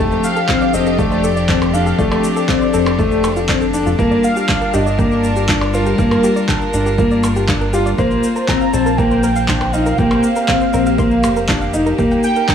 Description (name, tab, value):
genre	piano and strings electronica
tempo	120 BPM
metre	4/4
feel	straight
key	G minor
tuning	A4 = 440 Hz
part	bright chamber string section	sustained chords	0.0-12.5 s	F3 to A5	-21 LUFS	left 1 dB	none
part	soft round pluck	arpeggios	0.0-12.5 s	F4 to C6	-25 LUFS	right 1 dB	chorus, cassette tape, sidechain pumping, tape echo
part	warm baby grand piano	riff	0.0-12.5 s	A3 to F4	-17 LUFS	left 2 dB	tape echo
part	round analog bass	bass	0.0-12.2 s	Eb1 to Bb1	-21 LUFS	equal	sidechain pumping
part	electronic shaker, handclaps and percussion blips	drums	0.1-12.5 s	none	-23 LUFS	equal	none
part	warm velvety synth lead	melody	0.2-12.5 s	Bb4 to Bb5	-22 LUFS	right 2 dB	chorus, tape echo
part	electronic kick drum	drums	0.5-12.5 s	none	-20 LUFS	equal	none
room	light reverb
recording	small room ambience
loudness	-13 LUFS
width	side -8 dB against mid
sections	0.0-12.5 A section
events	none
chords	0.0 F6; 4.0 Gm7; 8.0 Bbsus2; 12.0 Eb